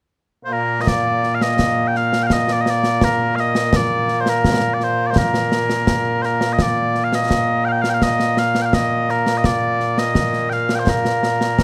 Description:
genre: scottish traditional, Scottish pipe music.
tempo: 84 BPM.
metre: 2/4.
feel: straight.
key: Bb major.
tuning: A4 = 441 Hz.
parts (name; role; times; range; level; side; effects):
mellow small bagpipes; melody; 0.5-11.6 s; Bb2 to G5; -19 LUFS; equal; none.
concert snare drum and concert bass drum; drums; 0.9-11.6 s; none; -23 LUFS; equal; none.
room: light reverb.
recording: close, detailed microphones.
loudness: -18 LUFS.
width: mono.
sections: 0.9-11.6 A section.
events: none.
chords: none.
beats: 0.16 | 0.87 1.59 | 2.30 3.02 | 3.73 4.45 | 5.16 5.87 | 6.59 7.30 | 8.02 8.73 | 9.45 10.16 | 10.87 11.59.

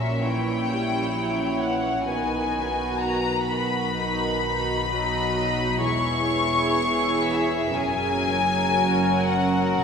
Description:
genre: classical, slow romantic movement for string orchestra.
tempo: 63 BPM.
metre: 4/4.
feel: rubato.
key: B major.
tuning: A4 = 440 Hz.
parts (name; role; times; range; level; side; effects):
rich studio violin section; melody; 0.0-9.8 s; E5 to C#6; -25 LUFS; left 4 dB; none.
rich studio violin section; second line; 0.0-9.8 s; C#4 to D#5; -28 LUFS; left 1 dB; none.
dark studio viola section; accompaniment; 0.0-9.8 s; D#3 to F#4; -28 LUFS; right 2 dB; none.
rich symphonic cello section; bass; 0.0-9.8 s; E2 to B2; -30 LUFS; right 2 dB; none.
warm symphonic double bass section; bass; 0.0-9.8 s; E1 to B1; -31 LUFS; right 1 dB; none.
room: wet church reverb, RT60 2.8 s.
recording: recorded in a church or concert hall.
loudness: -21 LUFS.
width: side -6 dB against mid.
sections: 0.0-9.8 A section.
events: none.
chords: 0.0 A#dim7; 2.1 B; 5.9 C#m/E; 7.8 F#.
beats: 0.21 1.15 | 2.08 3.02 3.97 4.92 | 5.86 6.82 7.78 8.76 | 9.79.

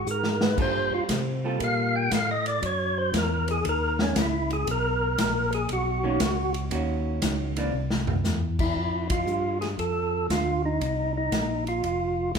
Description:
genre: soul jazz organ trio.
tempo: 117 BPM.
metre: 4/4.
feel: swing 67% on 8ths.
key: F major from 8.8 s.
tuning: A4 = 441 Hz.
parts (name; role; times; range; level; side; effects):
percussive tonewheel organ; melody; 0.0-12.3 s; Db4 to G5; -26 LUFS; right 1 dB; slow rotary speaker.
tonewheel organ; bass; 0.0-12.4 s; F1 to C3; -29 LUFS; left 1 dB; overdrive, chorus vibrato, slow rotary speaker.
swinging big-band drum kit; drums; 0.1-12.4 s; crash cymbal, hi-hat, kick drum, ride cymbal, snare drum, toms; -29 LUFS; equal; none.
vintage hollow-body jazz guitar; accompaniment; 0.6-2.1, 6.0-7.7 s; D#3 to A4; -31 LUFS; right 5 dB; none.
room: moderate large studio reverb, RT60 1.1 s.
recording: band playing live in one room.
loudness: -23 LUFS.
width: side -6 dB against mid.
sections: 0.0-8.8 A section; 8.8-12.4 B section.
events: tonewheel organ solo 0.0-8.8; drum fill 0.1-0.6, 7.7-8.2; band accent 9.0.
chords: 0.0 Abmadd9; 0.6 Gm9; 2.6 Gb5; 4.7 Bmaj7sus2; 6.7 Ebm7; 7.7 C; 8.8 Fadd9; 10.8 Cm7; 11.8 N.C..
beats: 0.07 | 0.58 1.09 1.60 2.12 | 2.63 3.14 3.65 4.16 | 4.67 5.18 5.69 6.20 | 6.71 7.23 7.74 8.25 | 8.76 9.27 9.79 10.30 | 10.81 11.32 11.84 12.35.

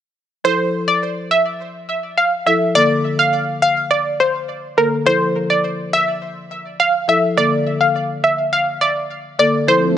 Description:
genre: dancehall.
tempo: 104 BPM.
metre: 4/4.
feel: straight.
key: F major.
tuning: A4 = 440 Hz.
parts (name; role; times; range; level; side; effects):
analog pluck; melody; 0.4-9.8 s; Bb4 to F5; -16 LUFS; right 1 dB; chorus, digital delay.
marimba with medium mallets; accompaniment; 0.4-10.0 s; D3 to A4; -22 LUFS; left 3 dB; none.
lush unison pad; sustained chords; 9.7-10.0 s; F3 to A4; -20 LUFS; right 1 dB; chorus.
room: light reverb.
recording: nothing above 10.4 kHz.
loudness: -15 LUFS.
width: side -10 dB against mid.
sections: 0.4-9.7 A section.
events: none.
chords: 0.4 Fmaj7; 2.8 Bbmaj7; 5.1 Fmaj7; 7.4 Bbmaj7.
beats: | 0.45 1.02 1.60 2.18 | 2.75 3.33 3.91 4.49 | 5.06 5.64 6.22 6.79 | 7.37 7.95 8.52 9.10 | 9.68.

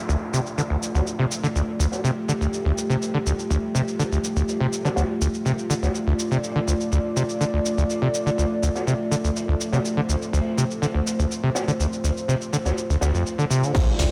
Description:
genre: acid house.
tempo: 123 BPM.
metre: 4/4.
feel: straight.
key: unclear.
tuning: A4 = 440 Hz.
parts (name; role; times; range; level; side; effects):
dark analog pad; sustained chords; 0.0-14.1 s; A3 to D5; -29 LUFS; equal; chorus, sidechain pumping.
downlifter and impact; sound effects; 0.0-2.0, 13.8-14.1 s; none; -35 LUFS; equal; none.
acid bass, saw; riff; 0.1-14.1 s; D2 to D3; -26 LUFS; equal; overdrive, lush chorus, sidechain pumping.
punchy analog drum machine; drums; 0.1-14.1 s; cabasa, crash cymbal, hi-hat; -35 LUFS; equal; none.
raw garage drum kit; drums; 0.1-14.1 s; hi-hat, snare drum; -37 LUFS; equal; none.
electronic kick drum; drums; 13.7-13.8 s; none; -24 LUFS; equal; none.
room: light reverb.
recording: none.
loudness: -23 LUFS.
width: mono.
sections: 0.0-13.7 A section.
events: impact 13.7-14.1.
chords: 0.0 Dm.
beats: | 0.09 0.58 1.06 1.55 | 2.04 2.53 3.02 3.50 | 3.99 4.48 4.97 5.45 | 5.94 6.43 6.92 7.41 | 7.89 8.38 8.87 9.36 | 9.84 10.33 10.82 11.31 | 11.79 12.28 12.77 13.26 | 13.75.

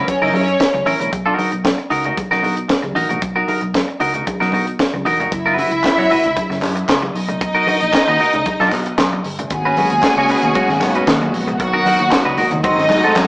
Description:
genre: disco.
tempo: 115 BPM.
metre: 4/4.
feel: straight.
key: unclear.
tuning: A4 = 440 Hz.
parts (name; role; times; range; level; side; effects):
clear studio string section; second line; 0.0-0.8, 5.3-13.3 s; C#4 to G#5; -17 LUFS; equal; none.
clean electric guitar; accompaniment; 0.0-13.2 s; B#3 to C#5; -18 LUFS; equal; none.
tight funk drum kit; drums; 0.1-13.3 s; hi-hat, kick drum, snare drum; -20 LUFS; equal; none.
congas; percussion; 0.1-13.3 s; none; -26 LUFS; equal; none.
fingered electric bass; bass; 0.2-13.3 s; E1 to B2; -25 LUFS; equal; none.
group handclap; percussion; 5.8-13.3 s; none; -23 LUFS; equal; none.
clear studio string section; sustained chords; 9.5-13.3 s; C#3 to F#4; -20 LUFS; equal; none.
room: wet studio reverb, RT60 0.6 s.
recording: band playing live in one room, small speaker sound.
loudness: -14 LUFS.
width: side -24 dB against mid.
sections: 0.0-5.3 A section; 5.3-13.3 B section.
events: none.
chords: 0.0 F#7; 1.1 Bmaj7; 5.3 F#7sus4; 7.2 Bmaj7; 9.5 G#m11; 11.6 Bmaj7; 12.6 G#7b9.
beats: 0.08 0.60 | 1.13 1.65 2.18 2.70 | 3.22 3.75 4.27 4.79 | 5.32 5.84 6.37 6.89 | 7.41 7.94 8.46 8.98 | 9.51 10.03 10.55 11.08 | 11.60 12.12 12.64 13.17.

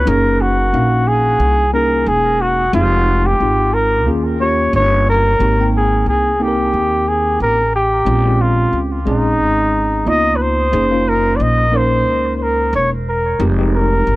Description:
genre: hip hop, jazz-hop.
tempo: 90 BPM.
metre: 4/4.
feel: swing 58% on 16ths.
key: Ab major.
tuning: A4 = 440 Hz.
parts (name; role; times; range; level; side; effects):
warm flugelhorn; melody; 0.0-14.2 s; Eb4 to Eb5; -15 LUFS; equal; analog delay.
upright bass; bass; 0.0-14.2 s; Fb1 to Eb2; -18 LUFS; equal; transformer saturation.
tine electric piano; accompaniment; 0.1-14.2 s; Ab3 to G5; -20 LUFS; left 1 dB; medium stereo tremolo.
room: light reverb.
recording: dry, gritty hardware recording.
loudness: -13 LUFS.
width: side -19 dB against mid.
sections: 0.0-5.4 A section; 5.4-14.2 B section.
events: flugelhorn solo 0.0-5.4.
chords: 0.1 Gb69; 2.7 Fm9; 4.1 Eb9sus4; 5.4 Abmaj9; 8.1 Bbm7; 10.1 Db13; 10.7 Gb6; 13.4 Fm9.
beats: | 0.06 0.73 1.40 2.06 | 2.73 3.40 4.06 4.73 | 5.40 6.06 6.73 7.40 | 8.06 8.73 9.40 10.06 | 10.73 11.40 12.06 12.73 | 13.40 14.06.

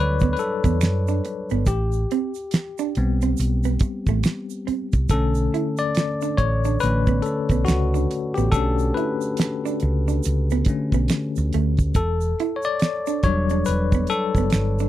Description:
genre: R&B, neo-soul.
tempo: 70 BPM.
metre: 4/4.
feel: swing 61% on 16ths.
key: B minor.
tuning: A4 = 440 Hz.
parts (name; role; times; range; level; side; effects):
bell-like tine electric piano; accompaniment; 0.0-14.9 s; D3 to D5; -24 LUFS; left 4 dB; fast stereo tremolo.
hollow-body short-scale fingered electric bass; bass; 0.0-14.9 s; E1 to F#2; -22 LUFS; right 1 dB; none.
vintage hollow-body jazz guitar; second line; 0.2-14.9 s; A3 to E4; -26 LUFS; right 12 dB; none.
damped 70s drum kit; drums; 0.2-14.8 s; hi-hat, kick drum, snare drum; -21 LUFS; right 1 dB; none.
egg shaker and finger snaps; percussion; 0.2-14.9 s; none; -37 LUFS; right 14 dB; none.
room: little or no reverb.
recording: dry, close 1970s-style studio recording.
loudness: -19 LUFS.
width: side -13 dB against mid.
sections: 0.0-14.9 A section.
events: tine electric piano solo 0.0-14.9.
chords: 0.0 Em9 (rootless); 1.7 Am9; 5.1 Bm9; 12.0 Em9.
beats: 0.81 | 1.67 2.52 3.38 4.24 | 5.09 5.95 6.81 7.67 | 8.52 9.38 10.24 11.10 | 11.95 12.81 13.67 14.52.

